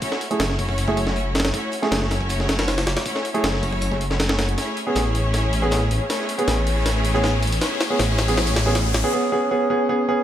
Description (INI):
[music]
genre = drum and bass, jungle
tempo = 158 BPM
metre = 4/4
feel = straight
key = unclear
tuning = A4 = 439 Hz
[part]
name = clear symphonic string section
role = sustained chords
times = 0.0-9.1 s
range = A3 to C#5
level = -27 LUFS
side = left 1 dB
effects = vintage 12-bit sampler grit
[part]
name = breakbeat sampler-style drum kit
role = drums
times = 0.0-9.0 s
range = hi-hat, kick drum, snare drum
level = -25 LUFS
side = equal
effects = high-pass filter on hats, small room ambience, high-pass filter on snare, high-pass filter on kick
[part]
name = crunchy breakbeat drum kit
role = drums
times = 0.0-9.0 s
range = hi-hat, snare drum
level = -36 LUFS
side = left 1 dB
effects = none
[part]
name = warm baby grand piano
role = stabs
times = 0.3-10.2 s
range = A3 to G#4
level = -24 LUFS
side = right 1 dB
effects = vintage 12-bit sampler grit, low-pass filter, dub echo
[part]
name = detuned saw bass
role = bass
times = 0.4-9.0 s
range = F#1 to A1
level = -23 LUFS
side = equal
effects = none
[part]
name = riser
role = sound effects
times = 6.0-9.1 s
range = none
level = -30 LUFS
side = left 3 dB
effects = none
[sound]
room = light reverb, studio reverb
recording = none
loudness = -19 LUFS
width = side -11 dB against mid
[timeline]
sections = 0.0-10.2 A section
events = build-up 0.0-10.2; filter sweep on grand piano 0.0-10.2; drum fill 4.6-9.1; riser 6.0-9.1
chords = 0.0 F#m7; 4.6 Amaj7